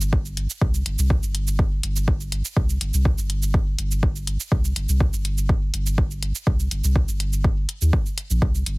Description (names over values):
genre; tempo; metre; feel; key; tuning
dub techno; 123 BPM; 4/4; straight; unclear; A4 = 440 Hz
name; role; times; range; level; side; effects
warm sub bass; bass; 0.0-8.8 s; G1 to Eb2; -23 LUFS; equal; sidechain pumping
electronic shaker and hi-hat; drums; 0.0-8.8 s; none; -31 LUFS; right 2 dB; none
electronic kick drum; drums; 0.1-8.5 s; none; -22 LUFS; equal; none
room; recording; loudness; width
little or no reverb; heavily compressed radio sound; -20 LUFS; side -27 dB against mid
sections
0.0-8.8 A section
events
none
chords
none